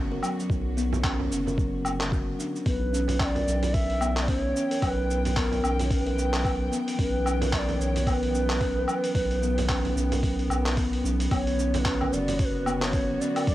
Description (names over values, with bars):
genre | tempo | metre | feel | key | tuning
organic downtempo | 111 BPM | 4/4 | swing 59% on 16ths | unclear | A4 = 440 Hz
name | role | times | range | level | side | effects
dark chamber string section | sustained chords | 0.0-13.5 s | D3 to G5 | -36 LUFS | left 1 dB | sidechain pumping, cassette tape
kalimba | arpeggios | 0.0-13.5 s | F#3 to A#4 | -30 LUFS | equal | cassette tape, tape echo
round analog bass | bass | 0.0-13.5 s | F#1 to B1 | -29 LUFS | equal | sidechain pumping
dusty soul sampler-style drum kit | drums | 0.2-13.5 s | cabasa, handclaps, hi-hat, woodblock | -32 LUFS | equal | overdrive
electronic kick drum | drums | 0.5-13.5 s | none | -28 LUFS | equal | overdrive
frame drum | percussion | 0.9-12.4 s | none | -36 LUFS | right 7 dB | none
breathy mellow low ney | melody | 2.7-13.5 s | A#4 to E5 | -31 LUFS | equal | cassette tape, tape echo
room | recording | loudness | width
light reverb | home recording on cassette | -23 LUFS | side -15 dB against mid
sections
0.0-11.3 A section; 11.3-13.5 B section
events
none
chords
0.0 Bm; 2.7 Em/B; 11.3 Bm